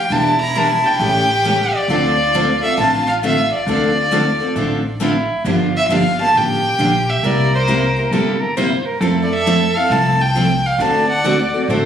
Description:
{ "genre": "acoustic string swing (jazz manouche)", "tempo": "135 BPM", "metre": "4/4", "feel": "swing 65% on 8ths", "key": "D minor", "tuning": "A4 = 443 Hz", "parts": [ { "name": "warm violin", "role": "melody", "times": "0.0-11.5 s", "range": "C5 to Bb5", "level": "-17 LUFS", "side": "equal", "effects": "plate reverb" }, { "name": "breathy soprano saxophone", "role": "second line", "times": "0.0-11.9 s", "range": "E4 to D5", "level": "-23 LUFS", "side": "right 2 dB", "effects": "none" }, { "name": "picked steel-string acoustic guitar", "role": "accompaniment", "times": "0.1-11.9 s", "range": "C3 to A4", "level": "-20 LUFS", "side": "left 3 dB", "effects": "none" }, { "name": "picked steel-string acoustic guitar", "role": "accompaniment", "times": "0.1-11.9 s", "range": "C3 to Bb4", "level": "-24 LUFS", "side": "right 7 dB", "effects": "none" }, { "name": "upright bass", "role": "bass", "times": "0.1-11.9 s", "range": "E1 to F2", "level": "-22 LUFS", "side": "equal", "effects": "none" } ], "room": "moderate studio ambience, RT60 0.5 s", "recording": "recorded on a phone in the room, studio reverb", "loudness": "-14 LUFS", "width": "side -9 dB against mid", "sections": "0.0-5.5 A section; 5.5-11.9 B section", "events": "none", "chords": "0.1 Em7b5; 1.0 A7; 1.9 Dm9; 5.5 Gm9; 7.2 C7; 9.0 Fmaj7; 10.8 D7", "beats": "| 0.11 0.55 1.00 1.45 | 1.89 2.34 2.78 3.23 | 3.67 4.12 4.56 5.01 | 5.46 5.90 6.35 6.79 | 7.24 7.68 8.13 8.57 | 9.02 9.46 9.91 10.35 | 10.80 11.24 11.69" }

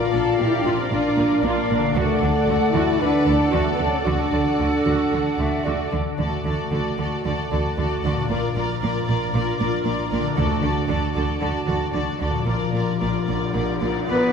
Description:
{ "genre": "cinematic", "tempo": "115 BPM", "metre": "4/4", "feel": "straight", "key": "unclear", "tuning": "A4 = 440 Hz", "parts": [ { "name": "warm symphonic violin section", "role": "melody", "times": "0.0-14.3 s", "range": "D5", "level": "-30 LUFS", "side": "left 4 dB", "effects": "none" }, { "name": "large flute ensemble", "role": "second line", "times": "0.0-5.9, 14.1-14.3 s", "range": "B4 to F#5", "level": "-30 LUFS", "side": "equal", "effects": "none" }, { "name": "warm clarinet", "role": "second line", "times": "0.0-6.2 s", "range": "A4 to E5", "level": "-30 LUFS", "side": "equal", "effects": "none" }, { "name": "warm symphonic violin section", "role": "second line", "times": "0.0-14.3 s", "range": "D4 to B4", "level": "-30 LUFS", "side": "left 1 dB", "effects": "none" }, { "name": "warm studio viola section", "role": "accompaniment", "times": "0.0-14.3 s", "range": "A3 to Bb4", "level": "-29 LUFS", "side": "right 3 dB", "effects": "none" }, { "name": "mellow French horn section", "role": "sustained chords", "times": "0.0-14.3 s", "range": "A3 to F#4", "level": "-24 LUFS", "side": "left 1 dB", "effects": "none" }, { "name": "concert harp", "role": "arpeggios", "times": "0.0-14.3 s", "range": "Bb2 to F#4", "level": "-31 LUFS", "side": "left 6 dB", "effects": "none" }, { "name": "dark symphonic double bass section", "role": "bass", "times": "0.1-14.2 s", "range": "Bb1 to D2", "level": "-27 LUFS", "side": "right 2 dB", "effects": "none" }, { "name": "warm symphonic cello section", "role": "bass", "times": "0.1-14.2 s", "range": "Bb2 to D3", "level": "-28 LUFS", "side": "right 3 dB", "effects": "none" }, { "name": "timpani", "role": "percussion", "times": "2.0-2.7, 10.4-11.1 s", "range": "D3", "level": "-30 LUFS", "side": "right 2 dB", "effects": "none" }, { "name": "bright oboe", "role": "second line", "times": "14.1-14.3 s", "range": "B4", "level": "-27 LUFS", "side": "left 2 dB", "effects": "none" }, { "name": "mellow trumpet", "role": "stabs", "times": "14.1-14.3 s", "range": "B3", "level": "-24 LUFS", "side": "right 3 dB", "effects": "none" } ], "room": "wet scoring stage reverb, RT60 1.8 s", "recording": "heard from further back in the room", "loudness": "-19 LUFS", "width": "side -6 dB against mid", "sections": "0.0-6.2 A section; 6.2-14.3 B section", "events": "none", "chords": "0.0 Bb; 2.0 D; 8.3 Bb; 10.4 D; 12.5 Bb", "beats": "0.40 0.92 1.44 | 1.96 2.49 3.01 3.53 | 4.06 4.59 5.12 5.66 | 6.19 6.72 7.25 7.77 | 8.29 8.81 9.33 9.85 | 10.37 10.89 11.41 11.94 | 12.48 13.02 13.56 14.09" }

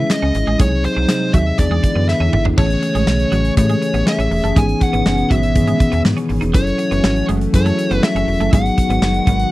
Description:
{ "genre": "1980s-style pop", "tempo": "121 BPM", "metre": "4/4", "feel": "straight", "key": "unclear", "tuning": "A4 = 440 Hz", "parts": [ { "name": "dark smooth lead guitar", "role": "melody", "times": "0.0-9.5 s", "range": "B#4 to G#5", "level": "-21 LUFS", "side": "left 1 dB", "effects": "overdrive, slapback echo" }, { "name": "mellow tine electric piano", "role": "accompaniment", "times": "0.0-9.5 s", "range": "D#3 to A4", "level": "-20 LUFS", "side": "left 2 dB", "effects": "none" }, { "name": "chorused pulse-width pad", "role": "sustained chords", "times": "0.0-9.5 s", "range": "B2 to G#4", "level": "-23 LUFS", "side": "right 1 dB", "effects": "none" }, { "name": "twelve-string electric guitar", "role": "riff", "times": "0.0-9.4 s", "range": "F#3 to D#4", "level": "-25 LUFS", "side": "right 4 dB", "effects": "ensemble chorus, slapback echo" }, { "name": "slap-like FM bass", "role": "bass", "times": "0.0-9.5 s", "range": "E1 to A2", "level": "-19 LUFS", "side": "equal", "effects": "none" }, { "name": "big rock drum kit", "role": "drums", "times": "0.1-9.5 s", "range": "crash cymbal, hi-hat, kick drum, snare drum, toms", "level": "-17 LUFS", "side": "equal", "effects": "none" } ], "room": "little or no reverb", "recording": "dry, close 1970s-style studio recording", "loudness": "-13 LUFS", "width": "side -17 dB against mid", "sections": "0.0-2.6 A section; 2.6-9.5 B section", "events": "drum fill 2.1-2.6", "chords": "0.0 C#m; 0.6 G#7/B#; 1.6 E7; 2.6 Amaj7; 4.6 Emaj7; 6.5 F#m7; 8.5 G#m7", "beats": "0.10 | 0.60 1.09 1.59 2.08 | 2.58 3.08 3.57 4.07 | 4.56 5.06 5.56 6.05 | 6.55 7.04 7.54 8.04 | 8.53 9.03" }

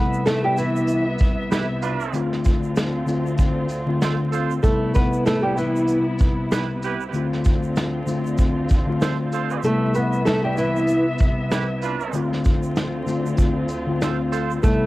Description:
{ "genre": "hip hop, boom-bap hip-hop", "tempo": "96 BPM", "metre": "4/4", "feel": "swing 58% on 16ths", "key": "D dorian", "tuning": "A4 = 437 Hz", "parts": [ { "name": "flamenco guitar", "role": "melody", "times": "0.0-14.9 s", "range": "E3 to B4", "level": "-21 LUFS", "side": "right 1 dB", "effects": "high-pass filter, low-pass filter, cassette tape" }, { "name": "mellow tine electric piano", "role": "accompaniment", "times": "0.0-14.9 s", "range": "C3 to F4", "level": "-24 LUFS", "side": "left 2 dB", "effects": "medium stereo tremolo, cassette tape, high-pass filter, low-pass filter" }, { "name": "warm studio string section", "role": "sustained chords", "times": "0.0-14.9 s", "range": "C2 to E5", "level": "-28 LUFS", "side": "equal", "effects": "high-pass filter, low-pass filter, cassette tape" }, { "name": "egg shaker", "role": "percussion", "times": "0.1-14.8 s", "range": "none", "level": "-46 LUFS", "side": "right 7 dB", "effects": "none" }, { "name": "soft brush drum kit", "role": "drums", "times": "0.3-14.8 s", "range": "hi-hat, kick drum, shaker, snare drum", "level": "-20 LUFS", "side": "equal", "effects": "vintage 12-bit sampler grit, cassette tape" }, { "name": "mellow horn section", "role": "stabs", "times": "1.5-14.5 s", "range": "D4 to C5", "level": "-29 LUFS", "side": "right 7 dB", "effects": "high-pass filter, low-pass filter, cassette tape, tape echo" } ], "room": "light reverb", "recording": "home recording on cassette, vinyl crackle", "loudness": "-19 LUFS", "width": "side -18 dB against mid", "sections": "0.0-14.9 A section", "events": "kick muted 9.6-10.3", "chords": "0.0 Cmaj7; 2.1 Dm7; 4.6 Cmaj7; 7.1 Dm7; 9.6 Cmaj7; 12.1 Dm7", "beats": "0.26 0.89 1.51 | 2.14 2.76 3.39 4.01 | 4.64 5.26 5.89 6.51 | 7.14 7.76 8.39 9.01 | 9.64 10.26 10.89 11.51 | 12.14 12.76 13.39 14.01 | 14.64" }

